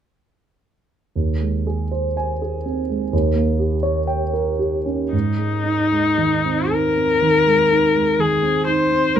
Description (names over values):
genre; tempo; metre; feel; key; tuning
classical, romantic duo for viola and grand piano; 54-65 BPM; 4/4; rubato; Ab major; A4 = 440 Hz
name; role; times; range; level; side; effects
dark concert grand piano; accompaniment; 1.2-9.2 s; Eb2 to Ab5; -19 LUFS; right 2 dB; none
rich viola; melody; 5.1-9.2 s; Eb4 to C5; -17 LUFS; left 4 dB; none
room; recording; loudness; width
light reverb; minimal, uncompressed stereo recording; -17 LUFS; side -9 dB against mid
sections
1.2-5.1 A section; 5.1-9.2 B section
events
none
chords
1.2 Ab/Eb; 3.1 Eb7; 5.1 Ab